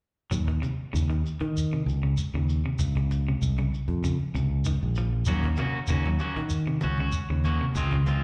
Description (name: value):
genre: afrobeat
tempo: 97 BPM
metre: 4/4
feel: swing 53% on 16ths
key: Eb dorian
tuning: A4 = 440 Hz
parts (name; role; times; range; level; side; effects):
- electric guitar at the edge of break-up; arpeggios; 0.3-8.2 s; C3 to Gb3; -34 LUFS; equal; slapback echo
- fingered electric bass; bass; 0.3-8.2 s; Bb1 to Eb3; -28 LUFS; equal; none
- cajon; drums; 0.3-8.2 s; none; -38 LUFS; equal; none
- shekere; percussion; 0.3-8.2 s; none; -35 LUFS; equal; none
- electric guitar at the edge of break-up; stabs; 5.3-8.2 s; Ab3 to Gb4; -34 LUFS; equal; slapback echo
- congas; percussion; 5.4-8.2 s; none; -37 LUFS; equal; none
room: studio reverb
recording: live gig heard through the venue's PA, club reverb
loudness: -27 LUFS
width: mono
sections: 0.3-8.2 A section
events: none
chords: 0.3 Eb7(no3); 2.8 Dbmaj7; 5.3 Ebm7